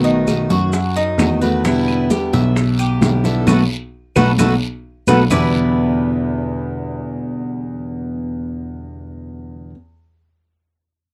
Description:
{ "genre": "latin, Cuban son and guajira", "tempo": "131 BPM", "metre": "4/4", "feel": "straight", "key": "E minor", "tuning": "A4 = 439 Hz", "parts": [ { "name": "picked steel-string acoustic guitar", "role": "accompaniment", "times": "0.0-9.8 s", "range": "E2 to F#4", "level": "-22 LUFS", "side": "equal", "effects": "none" }, { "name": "Cuban tres", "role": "arpeggios", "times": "0.0-9.7 s", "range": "D#4 to E5", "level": "-25 LUFS", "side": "equal", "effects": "none" }, { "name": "dark baby grand piano", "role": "bass", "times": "0.0-9.7 s", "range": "B1 to F#2", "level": "-22 LUFS", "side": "equal", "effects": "none" }, { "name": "bongos", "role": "percussion", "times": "0.0-5.4 s", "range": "none", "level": "-27 LUFS", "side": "equal", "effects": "none" }, { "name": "congas", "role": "percussion", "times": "0.1-5.4 s", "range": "none", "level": "-24 LUFS", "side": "equal", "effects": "none" }, { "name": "claves", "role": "percussion", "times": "0.3-5.4 s", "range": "none", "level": "-33 LUFS", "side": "equal", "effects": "none" }, { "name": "guiro", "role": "percussion", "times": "0.3-5.4 s", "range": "none", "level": "-36 LUFS", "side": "equal", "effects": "none" }, { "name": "maracas", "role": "percussion", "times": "0.3-5.4 s", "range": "none", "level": "-36 LUFS", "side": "equal", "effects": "none" } ], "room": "light reverb", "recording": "dry, close 1970s-style studio recording", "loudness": "-18 LUFS", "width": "mono", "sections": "0.0-5.3 A section; 5.3-9.0 B section", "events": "band accent 3.5-5.3; drum fill 5.1", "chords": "0.0 B7; 1.6 Em7; 3.5 B5; 5.3 Em7", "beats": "0.27 0.73 1.19 | 1.65 2.10 2.56 3.02 | 3.48 3.94 4.39 4.85 | 5.31 5.77 6.23 6.69 | 7.15 7.61 8.07 8.53" }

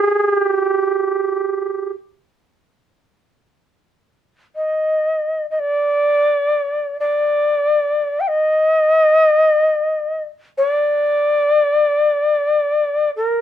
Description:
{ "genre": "japanese traditional, Japanese chamber music", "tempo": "free time", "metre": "none", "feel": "none", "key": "G hirajoshi", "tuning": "A4 = 439 Hz", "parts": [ { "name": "reedy shakuhachi", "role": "solo", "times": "0.0-13.4 s", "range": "G4 to G5", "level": "-15 LUFS", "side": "equal", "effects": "none" } ], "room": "light reverb", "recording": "minimal, uncompressed stereo recording", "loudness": "-15 LUFS", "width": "side -11 dB against mid", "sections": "0.0-3.2 A section; 3.2-13.4 A section", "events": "slowing down 11.1-13.4", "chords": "none", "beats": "free time" }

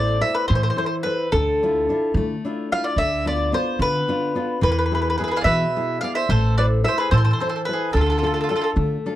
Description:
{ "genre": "italian folk, Italian serenade", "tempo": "73 BPM (dotted quarters)", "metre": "6/8", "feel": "straight", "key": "A harmonic minor", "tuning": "A4 = 440 Hz", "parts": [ { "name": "mandolin", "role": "melody", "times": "0.0-8.7 s", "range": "A4 to F5", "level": "-22 LUFS", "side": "equal", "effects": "none" }, { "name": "nylon-string guitar", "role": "accompaniment", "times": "0.0-9.2 s", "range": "B2 to C5", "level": "-26 LUFS", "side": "left 2 dB", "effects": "none" }, { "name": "upright bass", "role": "bass", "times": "0.0-9.0 s", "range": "A1 to E3", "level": "-21 LUFS", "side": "equal", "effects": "none" }, { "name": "bowl-back mandolin", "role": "second line", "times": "5.2-8.7 s", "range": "F4 to D5", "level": "-28 LUFS", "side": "right 4 dB", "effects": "none" } ], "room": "moderate studio ambience, RT60 0.5 s", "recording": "dark, warm production", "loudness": "-18 LUFS", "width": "side -13 dB against mid", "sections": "0.0-9.2 A section", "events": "none", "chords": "0.0 Am; 1.3 Dmadd9; 3.0 Bdim/D; 4.6 E; 6.3 Am; 7.9 Dm", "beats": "0.49 | 1.32 2.15 | 2.97 3.80 | 4.63 5.46 | 6.29 7.12 | 7.95 8.77" }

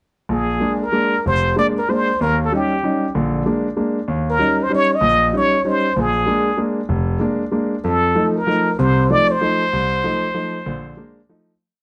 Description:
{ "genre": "jazz", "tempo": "191 BPM", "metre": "3/4", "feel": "swing 64% on 8ths", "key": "Bb major", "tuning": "A4 = 440 Hz", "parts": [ { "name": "trumpet with plunger mute", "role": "melody", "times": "0.3-11.3 s", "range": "G4 to Eb5", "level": "-20 LUFS", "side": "equal", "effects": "none" }, { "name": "clear grand piano", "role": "accompaniment", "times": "0.3-11.5 s", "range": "F1 to Eb4", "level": "-21 LUFS", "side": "equal", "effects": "none" } ], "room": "moderate club reverb, RT60 0.8 s", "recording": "dark, warm production", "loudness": "-18 LUFS", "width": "mono", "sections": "0.3-11.6 head", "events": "fade-out 9.4-11.6", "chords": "0.3 Bb7; 2.2 Eb7; 3.1 Bb7; 4.1 Eb7; 6.0 Bb7; 7.8 F7; 10.7 Bb7; 11.3 F7", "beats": "| 0.29 0.61 0.92 | 1.24 1.56 1.87 | 2.19 2.50 2.82 | 3.14 3.45 3.77 | 4.08 4.40 4.71 | 5.03 5.34 5.65 | 5.97 6.28 6.59 | 6.91 7.22 7.54 | 7.85 8.16 8.47 | 8.79 9.10 9.42 | 9.73 10.04 10.36 | 10.67 10.99 11.30" }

